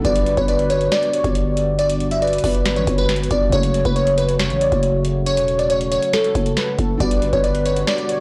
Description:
hip hop, trap; 138 BPM; 4/4; half-time; A4 = 440 Hz
glassy digital keys; melody; 0.0-8.2 s; A4 to E5; -22 LUFS; equal; chorus, digital delay
warm velvety synth lead; second line; 0.0-8.2 s; A4 to D5; -29 LUFS; equal; chorus, digital delay
felt-muted upright piano; accompaniment; 0.0-8.2 s; C#3 to F#4; -31 LUFS; equal
dark analog pad; sustained chords; 0.0-8.2 s; C#3 to F#4; -30 LUFS; equal; chorus, phaser
growling 808-style bass; bass; 0.0-7.9 s; E1 to A1; -24 LUFS; equal
booming analog drum machine; drums; 0.0-8.2 s; finger snaps, hi-hat, kick drum, snare drum; -26 LUFS; equal; soft clipping on snare
digital ambience; blown-out, overdriven recording, overdrive; -18 LUFS; mono
0.0-8.2 A section
0.0 Gmaj7; 3.5 F#m; 7.0 Gmaj7

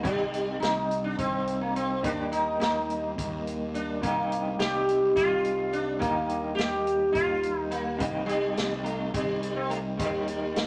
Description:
psychedelic rock; 211 BPM (eighths); 7/8; straight; C minor; A4 = 440 Hz
sitar; melody; 0.0-10.7 s; G3 to G4; -30 LUFS; equal
electric guitar through a small old amp; riff; 0.0-10.7 s; C3 to G4; -35 LUFS; equal; tremolo
fuzz fingered electric bass; bass; 0.0-10.7 s; C2 to Eb2; -38 LUFS; equal; overdrive
vintage drum kit; drums; 0.0-10.7 s; hi-hat, kick drum, snare drum; -36 LUFS; equal
moderate studio reverb, RT60 0.9 s; -28 LUFS; mono
0.0-10.7 A section
0.0 Cm; 2.0 Eb; 4.0 Cm; 6.0 Eb; 8.0 Cm; 10.0 Eb

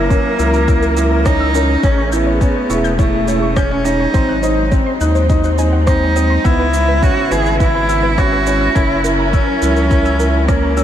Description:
piano and strings electronica; 104 BPM; 4/4; straight; A4 = 443 Hz
rich cello; melody; 0.0-10.8 s; A3 to G#4; -18 LUFS; equal; ping-pong delay
dark symphonic string section; sustained chords; 0.0-10.8 s; C#3 to A#4; -22 LUFS; right 1 dB; sidechain pumping
round analog bass; bass; 0.0-10.8 s; E1 to D#2; -18 LUFS; equal; sidechain pumping
warbly dusty pluck; arpeggios; 0.1-10.8 s; A#4 to G6; -26 LUFS; left 3 dB; chorus, sidechain pumping, ping-pong delay
warm upright piano; riff; 0.1-10.8 s; B3 to E4; -19 LUFS; right 2 dB; ping-pong delay
electronic kick drum; drums; 0.1-10.6 s; -16 LUFS; equal; small room reverb
electronic shaker and rim click; drums; 0.1-10.8 s; -31 LUFS; right 1 dB; small room reverb
moderate huge ambient reverb, RT60 8.1 s; dreamy mix soaked in reverb; -12 LUFS; side -10 dB against mid
0.0-10.8 A section
0.0 F#7; 1.8 Amaj7; 4.1 G#7; 6.4 C#m7; 8.8 F#7

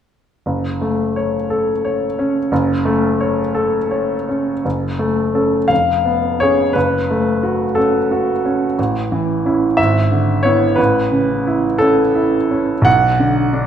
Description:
classical, romantic character piece for solo piano; 52-60 BPM (dotted quarters); 6/8; rubato; F# minor; A4 = 440 Hz
clear baby grand piano; solo; 0.5-13.7 s; E#1 to F#5; -14 LUFS; equal
wet scoring stage reverb, RT60 1.7 s; -14 LUFS; side -9 dB against mid
0.4-4.6 A section; 4.6-13.7 B section
0.4 F#m; 5.7 C#7/E#; 6.8 F#m; 8.8 A; 9.8 E7/G#; 10.8 A; 12.9 Bm

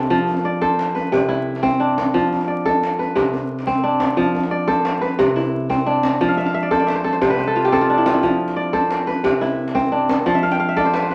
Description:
west african traditional, West African string and xylophone music; 118 BPM (dotted quarters); 12/8; straight; F lydian; A4 = 440 Hz
kora; arpeggios; 0.0-11.1 s; C3 to G5; -20 LUFS; equal
djembe; percussion; 0.0-11.1 s; -27 LUFS; equal
moderate large studio reverb, RT60 1.0 s; vinyl crackle; -19 LUFS; mono
0.1-11.1 A section
kora fill 6.3-8.2, 10.3-11.1
0.1 F; 1.1 C; 2.1 F; 3.2 Csus2; 4.2 F; 5.2 C; 6.2 F; 7.2 N.C.; 8.2 F; 9.2 C; 10.3 F

